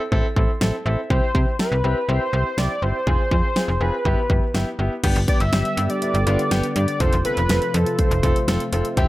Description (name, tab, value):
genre	synth-pop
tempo	122 BPM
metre	4/4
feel	straight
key	unclear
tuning	A4 = 436 Hz
part	warm concert grand piano	accompaniment	0.1-9.1 s	B3 to C6	-26 LUFS	left 1 dB	none
part	slap-like FM bass	bass	0.1-9.1 s	E1 to C3	-21 LUFS	equal	none
part	pop drum kit	drums	0.1-9.1 s	crash cymbal, hi-hat, kick drum, snare drum	-22 LUFS	equal	none
part	octave-doubled lead	melody	1.1-8.5 s	A4 to E5	-25 LUFS	equal	chorus, dub echo
part	sweeping resonant pad	sustained chords	5.0-9.1 s	C3 to G4	-27 LUFS	equal	chorus, phaser
room	light reverb, digital ambience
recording	echo-heavy mix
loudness	-18 LUFS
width	side -17 dB against mid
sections	0.0-5.0 A section; 5.0-9.1 B section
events	grand piano fill 0.1-1.1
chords	0.0 Am; 1.1 C; 3.1 Fm; 4.1 G6; 5.0 G; 7.0 F